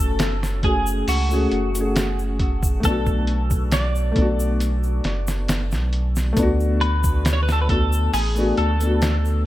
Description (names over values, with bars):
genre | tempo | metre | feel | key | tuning
trip hop | 68 BPM | 4/4 | straight | unclear | A4 = 442 Hz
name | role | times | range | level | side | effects
twelve-string electric guitar | melody | 0.0-9.4 s | F#4 to D5 | -27 LUFS | left 1 dB | wide subtle chorus, tape echo
felt-muted upright piano | accompaniment | 0.0-9.5 s | A3 to A4 | -25 LUFS | left 2 dB | tremolo
warm sub bass | bass | 0.0-9.5 s | F#1 to D2 | -22 LUFS | equal | none
trip hop sampler-style drum kit | drums | 0.2-9.2 s | hi-hat, kick drum, snare drum | -23 LUFS | equal | none
egg shaker | percussion | 0.2-9.4 s | none | -36 LUFS | left 1 dB | none
room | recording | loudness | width
light reverb, digital ambience | none | -18 LUFS | side -15 dB against mid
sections
0.0-9.5 A section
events
none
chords
0.0 F#madd9; 2.8 Bm7; 6.4 D6